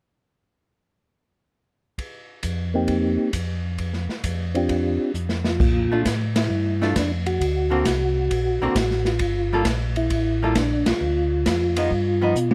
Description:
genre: soul jazz organ trio.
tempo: 133 BPM.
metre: 4/4.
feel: swing 68% on 8ths.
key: Bb major.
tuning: A4 = 440 Hz.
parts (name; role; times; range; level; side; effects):
open jazz drum kit; drums; 2.0-12.5 s; crash cymbal, hi-hat, kick drum, ride cymbal, snare drum, toms; -29 LUFS; equal; none.
mellow tonewheel organ; bass; 2.4-12.5 s; G1 to B2; -27 LUFS; equal; chorus vibrato, slow rotary speaker.
percussive tonewheel organ; melody; 2.7-12.5 s; Bb3 to G4; -26 LUFS; equal; slow rotary speaker, chorus vibrato, plate reverb.
archtop guitar, miked and amplified; accompaniment; 5.9-12.4 s; D3 to A4; -26 LUFS; equal; none.
room: light reverb.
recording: none.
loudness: -22 LUFS.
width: mono.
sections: 2.0-5.6 A section; 5.6-12.5 B section.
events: drum fill 5.1-5.6, 12.4; band accent 6.3, 10.8.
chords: 2.0 F7sus4; 5.6 Bbmaj7; 7.4 D7b13; 9.2 Gm9; 11.0 Dm6; 11.9 Gaug7.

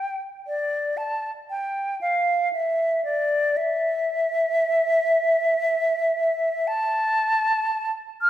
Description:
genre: classical, baroque-style fantasia for unaccompanied flute.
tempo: 59 BPM.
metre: 3/4.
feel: rubato.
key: unclear.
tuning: A4 = 440 Hz.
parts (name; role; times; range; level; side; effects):
mellow hollow silver concert flute; solo; 0.0-8.3 s; D5 to F6; -21 LUFS; equal; none.
room: wet recital hall reverb, RT60 1.8 s.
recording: recorded in a church or concert hall.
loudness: -21 LUFS.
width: side -12 dB against mid.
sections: 0.0-8.3 A section.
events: none.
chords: none.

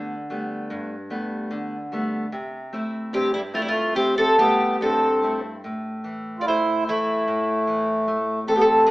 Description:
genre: fado-style ballad.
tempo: 74 BPM.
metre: 2/4.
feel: rubato.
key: C major, A minor from 5.6 s.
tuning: A4 = 440 Hz.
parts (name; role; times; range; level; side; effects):
nylon-string guitar; accompaniment; 0.0-8.9 s; E2 to E4; -29 LUFS; equal; none.
fingerpicked twelve-string acoustic guitar; melody; 3.1-8.9 s; E4 to D5; -20 LUFS; equal; none.
mellow accordion; second line; 3.1-8.9 s; G3 to F4; -23 LUFS; right 1 dB; none.
room: moderate stone room reverb, RT60 1.2 s.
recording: band playing live in one room, small speaker sound.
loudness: -21 LUFS.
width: side -19 dB against mid.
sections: 0.0-5.6 A section; 5.6-8.9 B section.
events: none.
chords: 0.0 Gadd9; 2.3 C6; 5.6 A5.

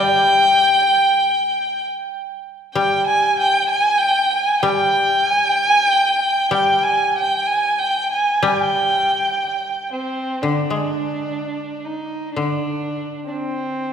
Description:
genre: japanese traditional, Japanese chamber music.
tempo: 63 BPM.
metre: 4/4.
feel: rubato.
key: G miyako bushi.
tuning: A4 = 441 Hz.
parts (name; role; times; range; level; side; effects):
warm violin; melody; 0.0-13.9 s; C4 to Ab5; -16 LUFS; equal; none.
koto; accompaniment; 0.0-13.9 s; D3 to Ab3; -24 LUFS; left 3 dB; none.
room: wet concert hall reverb, RT60 2.4 s.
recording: recorded in a church or concert hall.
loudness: -16 LUFS.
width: side -8 dB against mid.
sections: 0.0-10.4 A section; 10.4-13.9 B section.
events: none.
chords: none.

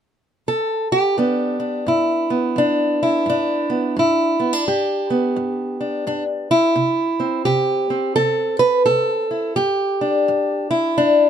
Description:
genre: acoustic country blues, solo or duo.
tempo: 86 BPM.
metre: 4/4.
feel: swing 61% on 8ths.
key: G major.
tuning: A4 = 442 Hz.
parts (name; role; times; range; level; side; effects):
fingerpicked acoustic archtop guitar; solo; 0.5-11.3 s; G2 to B4; -17 LUFS; equal; none.
room: little or no reverb.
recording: dark, warm production.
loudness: -17 LUFS.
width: side -8 dB against mid.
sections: 0.0-1.2 A section; 1.2-11.3 B section.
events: none.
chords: 0.0 N.C.; 1.2 G; 6.8 C; 9.6 G5.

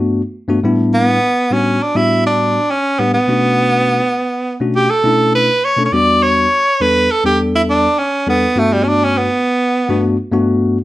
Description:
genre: progressive instrumental, progressive.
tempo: 204 BPM (eighths).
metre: 9/8.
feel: straight.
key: E dorian.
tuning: A4 = 442 Hz.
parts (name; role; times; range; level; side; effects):
bell-like tine electric piano; accompaniment; 0.0-10.8 s; E2 to A4; -15 LUFS; left 2 dB; none.
bright tenor saxophone; melody; 0.9-10.1 s; G3 to D5; -13 LUFS; right 1 dB; none.
room: wet studio reverb, RT60 0.6 s.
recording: none.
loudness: -12 LUFS.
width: side -16 dB against mid.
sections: 0.0-10.8 A section.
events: tenor saxophone solo 0.0-10.8.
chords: 0.0 Gmaj7; 0.6 A7sus4; 3.3 Bm7; 5.9 Em7; 8.6 Gmaj7.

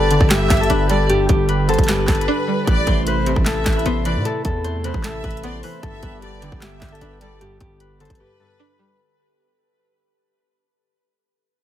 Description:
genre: hip hop, trap.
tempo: 152 BPM.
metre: 4/4.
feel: half-time.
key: unclear.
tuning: A4 = 440 Hz.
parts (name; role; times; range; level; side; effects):
Celtic harp; melody; 0.0-10.6 s; G4 to C5; -23 LUFS; left 3 dB; tape echo.
warm studio violin section; second line; 0.0-8.9 s; B4 to E5; -27 LUFS; right 1 dB; tape echo.
string-like resonator pluck; accompaniment; 0.0-9.0 s; G2 to D4; -26 LUFS; equal; chorus, phaser.
warm analog pad; sustained chords; 0.0-9.0 s; C3 to G4; -27 LUFS; right 1 dB; chorus.
distorted 808-style bass; bass; 0.0-8.2 s; G1 to A2; -22 LUFS; equal; distortion.
trap drum kit; drums; 0.1-8.2 s; handclaps, hi-hat, kick drum, snare drum; -19 LUFS; equal; none.
room: little or no reverb.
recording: heavily compressed radio sound.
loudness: -16 LUFS.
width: side -12 dB against mid.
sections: 0.0-9.0 A section.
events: fade-out 0.0-9.0; break 2.3-2.7, 8.2-9.0.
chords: 0.0 G; 2.7 Amadd9; 5.8 G.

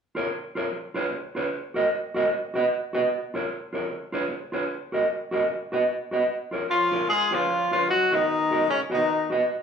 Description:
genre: ska.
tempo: 151 BPM.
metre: 4/4.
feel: swing 59% on 8ths.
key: unclear.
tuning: A4 = 440 Hz.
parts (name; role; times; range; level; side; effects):
mellow electric guitar; accompaniment; 0.1-9.4 s; E#4 to D#5; -25 LUFS; right 2 dB; slapback echo.
warm horn section; melody; 6.7-9.3 s; C#3 to G#4; -22 LUFS; left 2 dB; none.
room: wet large studio reverb, RT60 0.8 s.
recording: band playing live in one room.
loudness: -23 LUFS.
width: side -7 dB against mid.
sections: 0.0-6.3 A section; 6.3-9.6 B section.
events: none.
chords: 0.0 A#m/E#; 0.7 C#7; 1.5 F#6; 2.3 B/F#; 3.1 A#m/E#; 3.9 C#7; 4.7 F#6; 5.5 B/F#; 6.3 C#6; 7.1 C#7; 7.9 Bmaj7; 8.7 G#m7 (rootless).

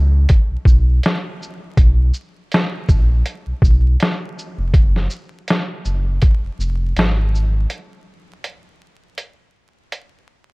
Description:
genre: lo-fi hip hop.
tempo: 81 BPM.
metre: 4/4.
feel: swing 56% on 16ths.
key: unclear.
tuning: A4 = 440 Hz.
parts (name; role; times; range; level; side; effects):
sub bass with octave; bass; 0.0-7.7 s; F1 to C#2; -16 LUFS; equal; none.
lo-fi sampler-style drum kit; drums; 0.3-10.1 s; hi-hat, kick drum, shaker, snare drum; -16 LUFS; equal; vintage 12-bit sampler grit.
room: little or no reverb.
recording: vinyl crackle.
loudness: -15 LUFS.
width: side -28 dB against mid.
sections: 0.0-7.7 A section; 7.7-10.5 B section.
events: break 7.7-10.5.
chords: none.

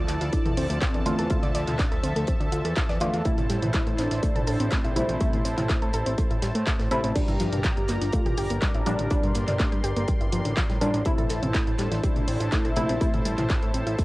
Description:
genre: melodic techno.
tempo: 123 BPM.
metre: 4/4.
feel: straight.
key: A phrygian.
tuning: A4 = 440 Hz.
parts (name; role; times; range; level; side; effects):
fat analog lead; melody; 0.0-13.2 s; C4 to G4; -34 LUFS; equal; ensemble chorus, sidechain pumping, cassette tape, analog delay.
warm analog pad; sustained chords; 0.0-14.0 s; F3 to C6; -33 LUFS; equal; chorus, tremolo, sidechain pumping.
soft round pluck; arpeggios; 0.0-14.0 s; D3 to D6; -32 LUFS; equal; chorus, sidechain pumping, tape echo.
filtered dub chord stab; stabs; 0.0-14.0 s; Bb2 to F4; -29 LUFS; equal; chorus, vintage 12-bit sampler grit, sidechain pumping, tape echo.
fat analog bass; bass; 0.0-14.0 s; D1 to A2; -29 LUFS; equal; tube saturation, sidechain pumping.
damped 70s drum kit; drums; 0.1-14.0 s; hi-hat, snare drum; -43 LUFS; right 1 dB; high-pass filter on hats, cassette tape, high-pass filter on snare, high-pass filter on room.
techno drum kit; drums; 0.1-14.0 s; crash cymbal, handclaps, hi-hat, toms; -32 LUFS; equal; cassette tape.
electronic kick drum; drums; 0.3-14.0 s; none; -26 LUFS; equal; distortion, cassette tape.
room: moderate spring reverb, RT60 1.2 s.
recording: home recording on cassette.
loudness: -22 LUFS.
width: side -19 dB against mid.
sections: 0.0-14.0 A section.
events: none.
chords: 0.0 Dm; 3.3 Am; 7.2 Gm; 11.1 Am.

